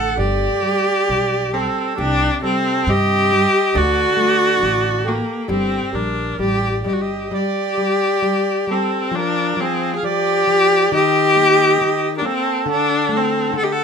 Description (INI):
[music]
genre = fado-style ballad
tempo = 67 BPM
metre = 2/4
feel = rubato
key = G minor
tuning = A4 = 440 Hz
[part]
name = clear viola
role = melody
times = 0.0-13.8 s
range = Bb3 to A4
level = -17 LUFS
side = left 2 dB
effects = none
[part]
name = accordion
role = second line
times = 0.0-13.8 s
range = G4 to F#5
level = -23 LUFS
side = right 8 dB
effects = none
[part]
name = nylon-string guitar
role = accompaniment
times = 0.0-13.8 s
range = C3 to A4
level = -24 LUFS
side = left 3 dB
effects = none
[part]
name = upright bass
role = bass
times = 0.0-7.3 s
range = G1 to G2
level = -23 LUFS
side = equal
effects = none
[sound]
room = moderate small room reverb, RT60 0.5 s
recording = minimal, uncompressed stereo recording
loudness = -15 LUFS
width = side -6 dB against mid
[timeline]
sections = 0.0-7.3 A section; 7.3-13.8 A section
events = none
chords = 0.2 G5; 2.0 Cm; 3.8 D; 5.5 Gm; 7.3 N.C.; 10.9 Eb; 12.7 D5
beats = | 0.17 1.08 | 1.98 2.88 | 3.75 4.62 | 5.49 6.39 | 7.32 8.24 | 9.13 10.03 | 10.93 11.80 | 12.66 13.55